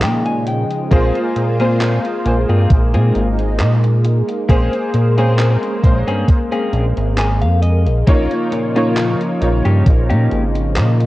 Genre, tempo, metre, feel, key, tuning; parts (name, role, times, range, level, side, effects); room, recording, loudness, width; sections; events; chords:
vaporwave; 67 BPM; 4/4; swing 53% on 16ths; Bb dorian; A4 = 438 Hz
clear electric grand piano; accompaniment; 0.0-11.1 s; Ab3 to Db5; -21 LUFS; equal; ensemble chorus, tape echo
lush unison pad; sustained chords; 0.0-11.1 s; Db3 to F4; -23 LUFS; equal; chorus, phaser
clean electric guitar; riff; 0.0-11.0 s; Bb3 to Ab5; -24 LUFS; left 2 dB; wide subtle chorus, tape echo
chorused synth bass; bass; 0.0-11.1 s; Ab1 to Bb2; -15 LUFS; equal
gated 80s digital drum machine; drums; 0.0-11.1 s; handclaps, hi-hat; -26 LUFS; equal; gated reverb
electronic kick drum; drums; 0.9-10.1 s; -13 LUFS; equal
digital ambience; worn, warbling old tape, cassette tape, warbly pitch drift, nothing above 10.7 kHz; -13 LUFS; side -17 dB against mid
0.0-11.1 A section
clean electric guitar fill 0.0-0.9, 6.7-8.1
0.0 Eb9sus4/Bb; 0.9 Ab69/Bb; 4.5 Bbm9; 8.1 Db69/Bb